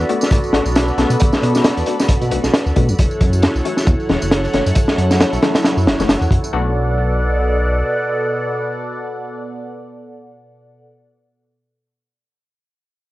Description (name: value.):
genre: breakbeat, breaks.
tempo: 135 BPM.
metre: 4/4.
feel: swing 57% on 16ths.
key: B minor.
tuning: A4 = 437 Hz.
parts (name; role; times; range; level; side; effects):
phased analog pad; sustained chords; 0.0-10.9 s; B2 to B5; -21 LUFS; equal; phaser, chorus, sidechain pumping, cassette tape.
dark detuned saw bass; bass; 0.0-7.8 s; E1 to B2; -18 LUFS; equal; none.
orchestra-hit-like synth stab; stabs; 0.1-11.3 s; E3 to F#4; -25 LUFS; left 6 dB; built-in reverb, cassette tape, analog delay.
crunchy breakbeat drum kit; drums; 0.1-6.4 s; hi-hat, kick drum, snare drum; -16 LUFS; equal; cassette tape.
tambourine; drums; 0.2-6.5 s; none; -32 LUFS; equal; overdrive, cassette tape.
room: light reverb.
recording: home recording on cassette.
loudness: -14 LUFS.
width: side -17 dB against mid.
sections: 0.0-6.5 A section; 6.5-10.1 B section.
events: filter sweep on synth stab 0.0-6.5.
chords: 0.0 Bm7; 3.0 F#m7; 6.5 Bm7.